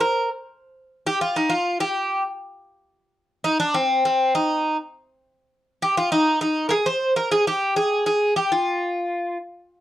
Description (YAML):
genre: greek folk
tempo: 101 BPM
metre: 2/4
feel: straight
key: unclear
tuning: A4 = 440 Hz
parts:
  - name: Greek bouzouki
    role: solo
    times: 0.0-9.4 s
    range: C4 to C5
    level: -19 LUFS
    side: equal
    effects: none
room: moderate studio reverb, RT60 0.5 s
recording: worn, warbling old tape, cassette tape, warbly pitch drift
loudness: -20 LUFS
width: side -13 dB against mid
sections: 0.0-2.6 A section; 2.6-9.8 A section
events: none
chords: none